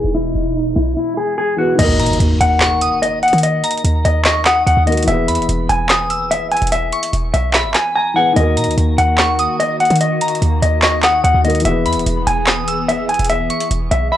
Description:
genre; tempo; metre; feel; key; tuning
hip hop, trap; 146 BPM; 4/4; half-time; Eb phrygian; A4 = 440 Hz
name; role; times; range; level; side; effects
mellow electric guitar; melody; 0.0-14.2 s; E4 to G#5; -17 LUFS; left 2 dB; low-pass filter
dark concert grand piano; accompaniment; 0.0-14.2 s; Eb3 to B4; -23 LUFS; left 2 dB; low-pass filter
hollow soft pad; sustained chords; 0.0-1.8, 8.4-14.2 s; B2 to G#4; -27 LUFS; equal; ensemble chorus
short 808-style bass; bass; 0.0-14.1 s; Eb1 to Eb3; -18 LUFS; equal; none
swell and impact; sound effects; 0.0-3.4 s; none; -23 LUFS; right 2 dB; none
trap drum kit; drums; 1.8-14.0 s; crash cymbal, handclaps, hi-hat, snare drum; -19 LUFS; equal; none
soft synth bell; second line; 2.0-14.2 s; G#5 to E6; -23 LUFS; right 2 dB; chorus, phaser, tape echo
room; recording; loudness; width
little or no reverb; dry, gritty hardware recording, cassette tape, low-pass filter; -13 LUFS; side -11 dB against mid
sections
0.0-1.8 A section; 1.8-14.2 B section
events
swell 0.0-1.8; filter sweep 0.0-1.8; impact 1.8-3.4; drums muted 8.0-8.4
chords
0.0 E; 1.8 Ebm; 5.1 E; 8.4 Ebm; 11.7 E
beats
| 0.14 0.56 0.97 1.38 | 1.79 2.20 2.61 3.02 | 3.43 3.84 4.25 4.67 | 5.08 5.49 5.90 6.31 | 6.72 7.13 7.54 7.95 | 8.36 8.78 9.19 9.60 | 10.01 10.42 10.83 11.24 | 11.65 12.06 12.47 12.88 | 13.30 13.71 14.12

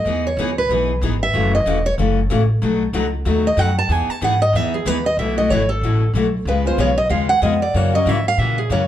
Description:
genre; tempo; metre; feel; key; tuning
acoustic string swing (jazz manouche); 188 BPM; 4/4; swing 59% on 8ths; E major; A4 = 440 Hz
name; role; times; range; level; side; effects
picked steel-string acoustic guitar; melody; 0.0-8.9 s; G#4 to A5; -19 LUFS; right 2 dB; none
upright bass; bass; 0.0-8.9 s; E1 to A#2; -20 LUFS; equal; none
picked steel-string acoustic guitar; accompaniment; 0.1-8.8 s; B2 to G#4; -21 LUFS; left 4 dB; none
room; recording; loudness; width
light reverb; dark, warm production; -16 LUFS; side -11 dB against mid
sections
0.0-5.2 A section; 5.2-8.9 A section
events
steel-string acoustic guitar solo 0.0-8.9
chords
0.1 Emaj7; 1.3 F#m7; 2.6 B7; 3.9 Emaj7; 5.2 B7sus4; 6.5 C#7; 7.7 F#7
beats
| 0.06 0.38 0.70 1.02 | 1.34 1.66 1.98 2.30 | 2.62 2.94 3.26 3.58 | 3.90 4.22 4.54 4.86 | 5.18 5.50 5.82 6.14 | 6.46 6.78 7.10 7.42 | 7.74 8.06 8.38 8.70

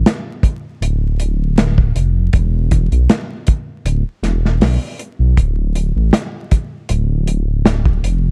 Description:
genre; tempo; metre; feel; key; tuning
trip hop; 79 BPM; 4/4; swing 54% on 16ths; unclear; A4 = 437 Hz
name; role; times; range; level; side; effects
dark detuned saw bass; bass; 0.0-8.3 s; D1 to B1; -17 LUFS; equal; none
modern studio drum kit; drums; 0.1-8.2 s; hi-hat, kick drum, snare drum; -18 LUFS; equal; none
room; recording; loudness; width
little or no reverb; dark, warm production, vinyl crackle; -17 LUFS; mono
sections
0.0-8.3 A section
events
none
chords
none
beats
0.06 0.82 1.58 | 2.34 3.10 3.86 4.62 | 5.38 6.14 6.90 7.66

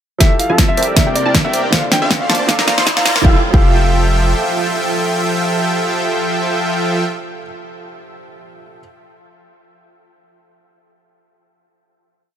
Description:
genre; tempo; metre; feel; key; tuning
future bass; 158 BPM; 4/4; swing 54% on 16ths, half-time; F major; A4 = 440 Hz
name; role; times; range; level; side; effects
clear grand piano; melody; 0.2-7.4 s; D5 to G5; -22 LUFS; left 1 dB; sidechain pumping, tape echo
felt-muted upright piano; accompaniment; 0.2-8.8 s; Bb2 to G5; -26 LUFS; right 4 dB; sidechain pumping, tape echo
thumb-piano-like synth pluck; arpeggios; 0.2-3.6 s; D4 to F5; -28 LUFS; right 3 dB; none
wide unison pluck; arpeggios; 0.2-7.4 s; E5 to C6; -27 LUFS; equal; none
supersaw chords; riff; 0.2-7.0 s; F3 to C6; -18 LUFS; equal; sidechain pumping, low-pass filter
long sustained 808-style bass; bass; 0.2-4.3 s; F1 to F2; -20 LUFS; equal; sidechain pumping, high-pass filter
electronic kick drum; drums; 0.2-3.6 s; none; -14 LUFS; equal; none
pop drum kit; drums; 0.2-3.2 s; hi-hat, snare drum; -17 LUFS; equal; none
riser; sound effects; 1.6-3.2 s; none; -24 LUFS; right 1 dB; none
room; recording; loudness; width
light reverb; high-pass filter; -12 LUFS; side -10 dB against mid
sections
0.2-3.2 build; 3.2-6.3 final chord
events
build-up 0.2-3.2; drum fill 0.2-3.2; filter sweep on supersaw synth 0.2-3.2; filter sweep 0.2-3.2; riser 1.6-3.2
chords
0.2 Fmaj9; 1.0 C9; 1.7 Dm7; 2.5 Bbmaj7; 3.2 Fmaj9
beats
| 0.21 0.59 0.97 1.35 | 1.73 2.10 2.48 2.87 | 3.25 3.62 4.00 4.38 | 4.76 5.14 5.52 5.90

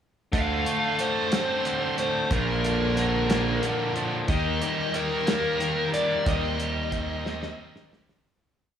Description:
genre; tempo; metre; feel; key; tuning
indie rock; 61 BPM (dotted quarters); 6/8; straight; unclear; A4 = 442 Hz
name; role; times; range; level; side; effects
dark smooth lead guitar; melody; 0.3-7.9 s; Bb4 to F5; -28 LUFS; left 1 dB; overdrive, slapback echo
distorted electric guitar; riff; 0.3-8.2 s; Bb2 to C4; -30 LUFS; left 6 dB; overdrive
scooped high-gain guitar; riff; 0.3-8.3 s; Bb2 to G4; -30 LUFS; right 10 dB; distortion, wide subtle chorus, slapback echo
fuzz picked electric bass; bass; 0.3-7.5 s; Bb1 to Eb2; -28 LUFS; right 1 dB; overdrive
cloth-damped thuddy drum kit; drums; 0.3-8.2 s; hi-hat, kick drum, snare drum; -28 LUFS; equal; none
percussive tonewheel organ; sustained chords; 4.3-8.2 s; Eb3 to Eb5; -41 LUFS; left 1 dB; none
room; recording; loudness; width
light reverb, studio reverb; studio ambience; -23 LUFS; side -9 dB against mid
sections
0.3-8.2 pre-chorus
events
fade-out 6.3-8.2; drum fill 7.2-8.2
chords
0.3 Dm7; 2.3 Bb; 4.3 Eb; 6.3 Cm/Eb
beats
| 0.33 1.32 | 2.31 3.30 | 4.28 5.27 | 6.26 7.25

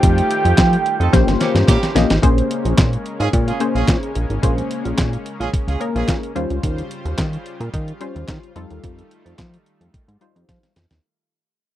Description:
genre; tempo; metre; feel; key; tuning
early-eighties boogie funk; 109 BPM; 4/4; straight; Bb dorian; A4 = 440 Hz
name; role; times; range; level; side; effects
fat analog lead; melody; 0.0-1.6 s; G5; -20 LUFS; right 4 dB; phaser, slapback echo
funky polysynth comp; accompaniment; 0.0-10.7 s; G3 to Eb5; -22 LUFS; left 3 dB; chorus
lush unison pad; sustained chords; 0.0-11.0 s; Db3 to C5; -29 LUFS; left 1 dB; chorus
chorused synth bass; bass; 0.0-11.0 s; G1 to F3; -19 LUFS; equal; none
detuned 8-bit digital drum machine; drums; 0.0-11.0 s; handclaps, hi-hat, kick drum, snare drum; -17 LUFS; equal; none
warm horn section; second line; 1.0-6.1 s; G3 to A4; -24 LUFS; right 5 dB; none
room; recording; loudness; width
little or no reverb; dry, close 1970s-style studio recording; -16 LUFS; side -13 dB against mid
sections
0.0-2.2 A section; 2.2-11.0 B section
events
band accent 0.0-2.2; drum fill 1.1-2.2, 10.5-11.0; fade-out 2.2-11.0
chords
0.0 F9; 1.1 Bbm69; 2.2 Bbm9; 6.4 Eb13; 8.6 F9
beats
| 0.03 0.58 1.13 1.68 | 2.23 2.78 3.33 3.88 | 4.43 4.98 5.53 6.08 | 6.63 7.18 7.73 8.29 | 8.84 9.39 9.94 10.49

